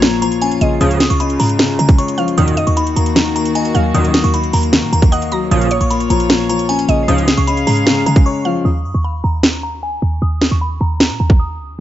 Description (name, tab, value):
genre	hip hop, trap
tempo	153 BPM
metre	4/4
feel	half-time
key	Eb minor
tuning	A4 = 440 Hz
part	glassy synth bell	melody	0.0-11.8 s	Ab5 to Eb6	-22 LUFS	equal	chorus, low-pass filter
part	mallet-like synth pluck	second line	0.0-8.6 s	Db5 to Bb5	-25 LUFS	right 3 dB	chorus, ping-pong delay
part	dark concert grand piano	accompaniment	0.0-8.7 s	Bb2 to Eb5	-18 LUFS	left 5 dB	none
part	warm studio string section	sustained chords	0.0-8.6 s	Db3 to F5	-24 LUFS	right 1 dB	none
part	short 808-style bass	bass	0.0-11.8 s	Bb1 to Db3	-18 LUFS	right 1 dB	none
part	trap drum kit	drums	0.0-11.4 s	hi-hat, kick drum, snare drum	-14 LUFS	right 1 dB	overdrive
part	sync-sweep polysynth	stabs	0.8-7.2 s	Gb2 to F3	-20 LUFS	right 4 dB	chorus
room	little or no reverb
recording	nothing above 7.7 kHz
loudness	-12 LUFS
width	side -12 dB against mid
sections	0.0-8.7 A section; 8.7-11.8 B section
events	break 8.3-8.7, 8.7-11.8; filter sweep on synth bell 8.7-11.8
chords	0.0 Bbm; 0.8 Db; 2.4 Ebm; 5.5 Bbm; 7.1 Db; 8.7 Eb5